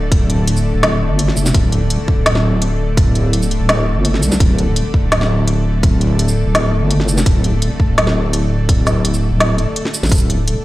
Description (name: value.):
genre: half-time drum and bass.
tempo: 168 BPM.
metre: 4/4.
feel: half-time.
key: unclear.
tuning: A4 = 440 Hz.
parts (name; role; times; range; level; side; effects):
bowed-like drone; sustained chords; 0.0-10.6 s; D3 to D5; -22 LUFS; left 2 dB; built-in reverb, sidechain pumping.
deep soft wobble bass; bass; 0.0-10.6 s; D1 to C2; -15 LUFS; equal; chorus.
electronic kick drum; drums; 0.1-10.2 s; none; -13 LUFS; equal; overdrive.
organic electronic drum kit; drums; 0.1-10.5 s; hi-hat, shaker, snare drum; -19 LUFS; equal; none.
room: light reverb, digital ambience.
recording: played on a big sound system in a bare room, large studio reverb.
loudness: -12 LUFS.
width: side -17 dB against mid.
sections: 0.0-10.6 A section.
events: none.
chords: 0.0 D5.